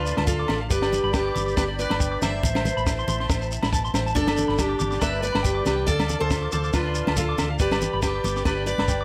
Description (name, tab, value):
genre	highlife guitar band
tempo	140 BPM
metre	4/4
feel	swing 55% on 16ths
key	unclear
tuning	A4 = 440 Hz
part	picked steel-string acoustic guitar	melody	0.0-9.0 s	D4 to E5	-29 LUFS	equal	none
part	warm clarinet	second line	0.0-9.0 s	D4 to C5	-36 LUFS	equal	none
part	nylon-string guitar	accompaniment	0.0-9.0 s	G2 to B4	-39 LUFS	equal	none
part	musette accordion	sustained chords	0.0-9.0 s	C4 to B5	-40 LUFS	equal	none
part	clean electric guitar	arpeggios	0.0-9.0 s	C5 to D6	-34 LUFS	equal	slapback echo
part	hollow-body short-scale fingered electric bass	bass	0.0-9.0 s	G1 to D2	-31 LUFS	equal	none
part	shekere	percussion	0.1-9.0 s	none	-34 LUFS	equal	none
part	compact cocktail drum kit	drums	0.2-9.0 s	kick drum, snare drum	-29 LUFS	equal	none
part	agogo bells	percussion	0.2-8.9 s	none	-37 LUFS	equal	none
part	congas	percussion	0.2-8.9 s	none	-34 LUFS	equal	none
room	light reverb, small room reverb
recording	none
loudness	-24 LUFS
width	mono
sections	0.0-9.0 A section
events	none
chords	0.0 Dm; 0.7 G; 2.4 Amadd9; 4.2 G; 5.9 Dm; 7.6 G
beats	0.28 | 0.71 1.14 1.57 2.00 | 2.44 2.87 3.30 3.73 | 4.16 4.59 5.02 5.45 | 5.88 6.30 6.73 7.16 | 7.59 8.02 8.45 8.88